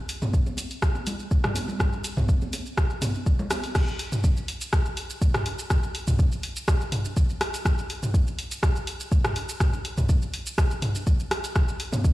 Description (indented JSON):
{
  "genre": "house",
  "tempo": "123 BPM",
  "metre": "4/4",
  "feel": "straight",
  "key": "none",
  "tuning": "none",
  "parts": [
    { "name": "deep house drum kit", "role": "drums", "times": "0.1-12.1 s", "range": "crash cymbal, hi-hat, rim click, shaker, toms", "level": "-28 LUFS", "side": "equal", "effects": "none" },
    { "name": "congas", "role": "percussion", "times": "0.2-3.6, 11.9-12.0 s", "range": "none", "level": "-34 LUFS", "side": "right 1 dB", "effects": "none" },
    { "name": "electronic kick drum", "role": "drums", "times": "0.3-12.1 s", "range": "none", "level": "-22 LUFS", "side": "equal", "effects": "none" }
  ],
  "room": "light reverb",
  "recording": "played on a big sound system in a bare room, stone room reverb, lossy compression artefacts",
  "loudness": "-23 LUFS",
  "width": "side -17 dB against mid",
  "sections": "0.0-3.8 A section; 3.8-12.1 B section",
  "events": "drop 3.8-12.1",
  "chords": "none"
}